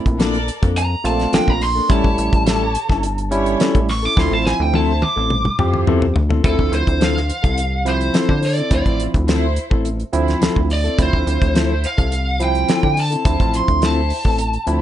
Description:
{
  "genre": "straight-eighth soul blues",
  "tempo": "106 BPM",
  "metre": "4/4",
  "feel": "straight",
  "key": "D minor",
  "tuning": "A4 = 442 Hz",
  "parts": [
    { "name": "barky tine electric piano", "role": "accompaniment", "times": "0.0-14.8 s", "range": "F3 to G4", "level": "-22 LUFS", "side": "right 3 dB", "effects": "medium stereo tremolo" },
    { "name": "rubbery square bass", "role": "bass", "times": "0.1-14.8 s", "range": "G1 to D3", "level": "-20 LUFS", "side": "equal", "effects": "none" },
    { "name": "damped 70s drum kit", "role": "drums", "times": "0.1-14.8 s", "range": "hi-hat, kick drum, snare drum, toms", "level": "-19 LUFS", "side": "equal", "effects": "none" },
    { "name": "warm studio string section", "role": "sustained chords", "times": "0.2-14.8 s", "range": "E3 to D5", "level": "-31 LUFS", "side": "left 1 dB", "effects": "none" },
    { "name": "mellow electric guitar", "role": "stabs", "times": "0.2-14.4 s", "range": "F3 to A4", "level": "-24 LUFS", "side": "left 7 dB", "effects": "analog delay" },
    { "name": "lead guitar through a small cranked amp", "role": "melody", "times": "0.8-14.8 s", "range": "A4 to D6", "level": "-21 LUFS", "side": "right 1 dB", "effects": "overdrive" }
  ],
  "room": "light reverb",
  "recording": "nothing above 10.7 kHz",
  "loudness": "-15 LUFS",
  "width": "side -11 dB against mid",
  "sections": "0.0-6.4 A section; 6.4-14.8 B section",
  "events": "lead electric guitar solo 0.0-6.4; drum fill 4.2-6.4",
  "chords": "0.0 Bbmaj7; 1.9 A7; 4.2 Dm9",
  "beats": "0.20 0.76 1.33 | 1.90 2.47 3.03 3.60 | 4.17 4.74 5.30 5.87 | 6.44 7.01 7.58 8.14 | 8.71 9.28 9.85 10.41 | 10.98 11.55 12.12 12.68 | 13.25 13.82 14.38"
}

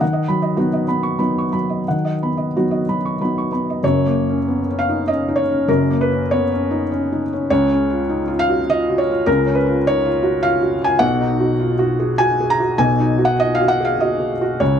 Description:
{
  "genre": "neoclassical minimalist piano",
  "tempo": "90-104 BPM",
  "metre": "3/4",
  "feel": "rubato",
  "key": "unclear",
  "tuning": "A4 = 440 Hz",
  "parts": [
    { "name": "felt-muted upright piano", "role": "solo", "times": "0.0-14.8 s", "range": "Gb1 to Db6", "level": "-16 LUFS", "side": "equal", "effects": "none" }
  ],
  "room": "little or no reverb",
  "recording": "close, detailed microphones",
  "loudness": "-16 LUFS",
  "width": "side -8 dB against mid",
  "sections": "0.0-3.8 A section; 3.8-14.8 B section",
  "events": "none",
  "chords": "0.0 B/D#; 3.8 Gb; 7.5 Db; 11.0 B",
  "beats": "| 0.01 0.60 1.21 | 1.85 2.51 3.17 | 3.82 4.45 5.06 | 5.68 6.29 6.90 | 7.50 8.08 8.68 | 9.27 9.85 10.44 | 11.02 11.60 12.19 | 12.79 13.38 13.99 | 14.60"
}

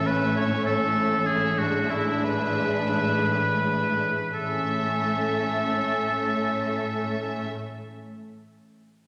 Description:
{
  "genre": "classical, dramatic, fast romantic movement for symphony orchestra",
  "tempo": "81-103 BPM",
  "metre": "4/4",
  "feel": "rubato",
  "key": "A major",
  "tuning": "A4 = 437 Hz",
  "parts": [
    { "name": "warm symphonic violin section", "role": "melody", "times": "0.0-7.5 s", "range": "E5", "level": "-38 LUFS", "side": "equal", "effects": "none" },
    { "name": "bright oboe", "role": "second line", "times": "0.0-7.5 s", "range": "E4 to C#5", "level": "-29 LUFS", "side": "equal", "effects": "none" },
    { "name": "warm symphonic violin section", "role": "second line", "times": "0.0-7.5 s", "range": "C#4 to D4", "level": "-34 LUFS", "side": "equal", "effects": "none" },
    { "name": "warm symphonic viola section", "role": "accompaniment", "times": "0.0-7.5 s", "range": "G#3 to A3", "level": "-33 LUFS", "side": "equal", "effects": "none" },
    { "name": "concert harp", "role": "arpeggios", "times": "0.0-8.2 s", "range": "A2 to C#5", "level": "-36 LUFS", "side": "equal", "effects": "none" },
    { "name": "warm symphonic cello section", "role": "bass", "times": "0.0-7.5 s", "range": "A2", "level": "-35 LUFS", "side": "equal", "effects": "none" }
  ],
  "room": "wet scoring stage reverb, RT60 2.0 s",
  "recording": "none",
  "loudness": "-25 LUFS",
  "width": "mono",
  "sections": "0.0-4.3 A section; 4.3-7.2 B section",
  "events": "slowing down 0.0-4.3",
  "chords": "0.0 A; 1.6 E7/A; 4.3 A",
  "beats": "0.36 0.96 | 1.58 2.24 2.90 3.59 | 4.32 5.03 5.74 6.45"
}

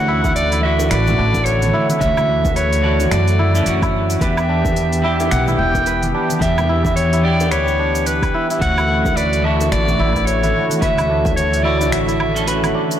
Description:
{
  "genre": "organic downtempo",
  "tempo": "109 BPM",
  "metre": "4/4",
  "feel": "swing 59% on 16ths",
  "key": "unclear",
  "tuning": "A4 = 440 Hz",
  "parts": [
    { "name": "bright clarinet", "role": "melody", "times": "0.0-12.7 s", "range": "B4 to G5", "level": "-20 LUFS", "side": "equal", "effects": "vintage 12-bit sampler grit, digital delay" },
    { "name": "clean electric guitar", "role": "accompaniment", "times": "0.0-13.0 s", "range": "E3 to E5", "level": "-23 LUFS", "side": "right 2 dB", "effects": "spring reverb, sidechain pumping, digital delay" },
    { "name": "warm analog pad", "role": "sustained chords", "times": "0.0-13.0 s", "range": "D3 to G5", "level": "-24 LUFS", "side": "equal", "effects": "chorus, sidechain pumping" },
    { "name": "kora", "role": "arpeggios", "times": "0.0-13.0 s", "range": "D4 to B4", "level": "-24 LUFS", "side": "equal", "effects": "digital delay" },
    { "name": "upright bass", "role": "bass", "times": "0.0-12.7 s", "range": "E1 to F#2", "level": "-19 LUFS", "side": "equal", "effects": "tube saturation, sidechain pumping" },
    { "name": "afro-pop drum kit", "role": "drums", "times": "0.2-13.0 s", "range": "cabasa, finger snaps, hi-hat, woodblock", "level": "-27 LUFS", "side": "right 1 dB", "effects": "soft clipping on snare" },
    { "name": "electronic kick drum", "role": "drums", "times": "0.2-11.3 s", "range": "none", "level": "-22 LUFS", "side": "equal", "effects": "none" },
    { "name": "congas and bongos", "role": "percussion", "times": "0.2-12.7 s", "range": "none", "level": "-28 LUFS", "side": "equal", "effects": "none" }
  ],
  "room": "moderate lush hall reverb, RT60 1.8 s",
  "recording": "blown-out, overdriven recording, overdrive",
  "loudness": "-14 LUFS",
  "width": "side -10 dB against mid",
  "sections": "0.0-13.0 A section",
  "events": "kick drops out 11.9-13.0",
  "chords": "0.0 Dmaj9; 4.2 Em7; 8.6 Dmaj9",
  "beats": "0.36 0.91 1.46 | 2.01 2.56 3.11 3.66 | 4.21 4.76 5.31 5.87 | 6.42 6.96 7.52 8.07 | 8.62 9.17 9.72 10.27 | 10.82 11.37 11.92 12.47"
}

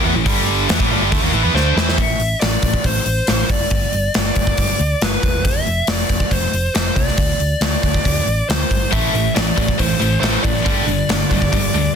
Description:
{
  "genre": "hard rock",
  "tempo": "138 BPM",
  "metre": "4/4",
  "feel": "straight",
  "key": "A minor",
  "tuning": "A4 = 439 Hz",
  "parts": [
    { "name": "scooped high-gain guitar", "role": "riff", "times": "0.0-2.0, 8.9-11.9 s", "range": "G2 to E4", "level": "-21 LUFS", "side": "left 13 dB", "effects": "distortion" },
    { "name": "tight distorted guitar", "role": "riff", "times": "0.0-2.0, 8.9-11.9 s", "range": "G2 to E4", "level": "-21 LUFS", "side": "right 13 dB", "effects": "distortion" },
    { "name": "hollow-body short-scale fingered electric bass", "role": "bass", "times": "0.0-11.9 s", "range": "E1 to E2", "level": "-21 LUFS", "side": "equal", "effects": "none" },
    { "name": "gated 80s drum kit", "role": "drums", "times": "0.3-11.8 s", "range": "hi-hat, kick drum, snare drum", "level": "-18 LUFS", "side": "equal", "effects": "none" },
    { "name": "smooth overdriven lead guitar", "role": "melody", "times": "1.6-11.9 s", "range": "B4 to E5", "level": "-22 LUFS", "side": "equal", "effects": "slapback echo" }
  ],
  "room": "studio reverb",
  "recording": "dense, heavily limited modern master",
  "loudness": "-15 LUFS",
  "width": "side -7 dB against mid",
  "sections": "0.0-2.0 A section; 2.0-12.0 B section",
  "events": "drum fill 1.5-2.0",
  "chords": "0.2 G5; 0.7 Am; 3.7 G; 5.4 F5; 7.2 D5; 8.9 Am; 10.7 G5",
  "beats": "| 0.25 0.68 1.11 1.54 | 1.98 2.41 2.84 3.27 | 3.71 4.14 4.58 5.01 | 5.44 5.88 6.31 6.74 | 7.18 7.61 8.04 8.48 | 8.91 9.35 9.78 10.22 | 10.65 11.09 11.52"
}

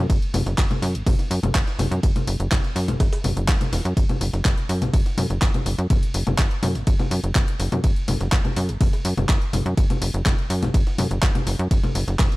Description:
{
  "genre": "melodic techno",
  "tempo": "124 BPM",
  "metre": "4/4",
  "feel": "straight",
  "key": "unclear",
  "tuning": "A4 = 440 Hz",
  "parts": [
    { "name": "tight sequencer bass", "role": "bass", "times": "0.0-12.3 s", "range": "E1 to F#2", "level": "-23 LUFS", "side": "equal", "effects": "tube saturation, sidechain pumping" },
    { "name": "breakbeat sampler-style drum kit", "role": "drums", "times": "0.1-12.3 s", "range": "hi-hat, snare drum, tambourine", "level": "-37 LUFS", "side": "equal", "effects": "none" },
    { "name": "deep house drum kit", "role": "drums", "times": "0.1-12.4 s", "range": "congas, handclaps, hi-hat, ride cymbal", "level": "-26 LUFS", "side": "left 1 dB", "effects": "none" },
    { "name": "electronic kick drum", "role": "drums", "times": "0.1-12.3 s", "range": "none", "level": "-20 LUFS", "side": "equal", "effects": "none" }
  ],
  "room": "little or no reverb",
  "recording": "dark, warm production",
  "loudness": "-19 LUFS",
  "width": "side -20 dB against mid",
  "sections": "0.0-12.4 A section",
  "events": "none",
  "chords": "none",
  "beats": "| 0.10 0.58 1.07 1.55 | 2.03 2.52 3.00 3.48 | 3.97 4.45 4.94 5.42 | 5.90 6.39 6.87 7.36 | 7.84 8.32 8.81 9.29 | 9.78 10.26 10.74 11.23 | 11.71 12.20"
}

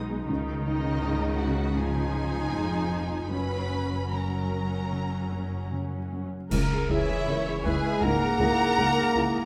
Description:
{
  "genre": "cinematic, emotional film score for orchestra",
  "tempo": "74-83 BPM",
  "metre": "4/4",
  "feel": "rubato",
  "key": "unclear",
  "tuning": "A4 = 441 Hz",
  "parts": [
    { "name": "felt-muted upright piano", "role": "accompaniment", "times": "0.0-9.5 s", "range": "B1 to A#4", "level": "-35 LUFS", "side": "equal", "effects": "none" },
    { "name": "rich studio viola section", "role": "accompaniment", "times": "0.0-9.5 s", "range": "D#3 to C#5", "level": "-36 LUFS", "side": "equal", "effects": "none" },
    { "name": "dark studio double bass section", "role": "bass", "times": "0.0-9.2 s", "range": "E#1 to C#2", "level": "-34 LUFS", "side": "equal", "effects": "none" },
    { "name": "rich studio cello section", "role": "bass", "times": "0.0-9.2 s", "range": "C#2 to C#3", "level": "-36 LUFS", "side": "equal", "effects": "none" },
    { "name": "warm studio violin section", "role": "melody", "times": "0.7-9.5 s", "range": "D#5 to B5", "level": "-36 LUFS", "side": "equal", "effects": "none" },
    { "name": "warm studio violin section", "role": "second line", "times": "0.7-9.5 s", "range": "D#4 to B4", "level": "-38 LUFS", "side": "equal", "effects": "none" },
    { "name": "clash cymbals and concert bass drum", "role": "percussion", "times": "6.5-8.0 s", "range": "none", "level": "-36 LUFS", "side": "equal", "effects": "none" },
    { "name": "concert flute", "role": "second line", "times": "6.9-9.5 s", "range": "C#5 to F#5", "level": "-33 LUFS", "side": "equal", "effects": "none" },
    { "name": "mellow French horn section", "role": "sustained chords", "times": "6.9-9.5 s", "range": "E3 to A#3", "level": "-32 LUFS", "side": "equal", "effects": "none" }
  ],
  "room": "wet scoring stage reverb, RT60 1.6 s",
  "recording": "none",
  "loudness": "-27 LUFS",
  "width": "mono",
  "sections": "0.0-6.5 A section; 6.5-9.5 A section",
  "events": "band accent 6.5-7.3",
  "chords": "0.3 C#add9; 3.3 F#; 6.5 C#m",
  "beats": "| 0.29 1.02 1.77 2.54 | 3.32 4.12 4.92 5.72 | 6.51 7.26 8.02 8.77"
}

